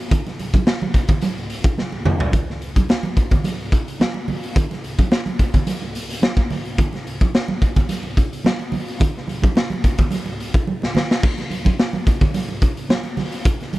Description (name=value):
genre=funk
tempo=108 BPM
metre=4/4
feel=straight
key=none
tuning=none
part: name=raw garage drum kit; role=drums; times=0.1-13.8 s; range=crash cymbal, hi-hat, kick drum, snare drum, toms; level=-18 LUFS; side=equal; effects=none
part: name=congas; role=percussion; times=0.1-13.8 s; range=none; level=-25 LUFS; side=right 4 dB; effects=none
room=studio reverb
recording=none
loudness=-17 LUFS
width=side -18 dB against mid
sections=0.0-2.3 A section; 2.3-11.2 B section; 11.2-13.8 C section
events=drum fill 1.8-2.3, 10.7-11.2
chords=none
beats=| 0.11 0.67 1.22 1.78 | 2.33 2.89 3.45 4.00 | 4.56 5.12 5.67 6.23 | 6.78 7.34 7.90 8.45 | 9.01 9.56 10.12 10.68 | 11.23 11.79 12.35 12.90 | 13.46